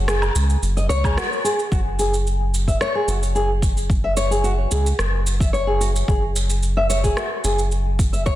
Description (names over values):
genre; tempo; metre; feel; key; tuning
organic downtempo; 110 BPM; 4/4; straight; unclear; A4 = 439 Hz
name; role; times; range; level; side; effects
round analog bass; bass; 0.0-8.4 s; F#1 to C#2; -21 LUFS; equal; sidechain pumping
nylon-string guitar; arpeggios; 0.1-8.4 s; F#4 to E5; -23 LUFS; left 1 dB; tape echo
electronic rim click, cabasa and woodblock; drums; 0.1-8.4 s; none; -26 LUFS; equal; soft clipping on snare
electronic kick drum; drums; 1.0-8.4 s; none; -20 LUFS; equal; none
room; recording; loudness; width
moderate echo chamber reverb, RT60 1.7 s; dense, heavily limited modern master; -18 LUFS; side -14 dB against mid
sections
0.0-1.7 A section; 1.7-8.4 B section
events
band accent 1.2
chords
0.0 G#5/F#; 1.7 F#5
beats
0.08 0.63 1.17 | 1.72 2.26 2.81 3.35 | 3.90 4.44 4.99 5.54 | 6.08 6.63 7.17 7.72 | 8.26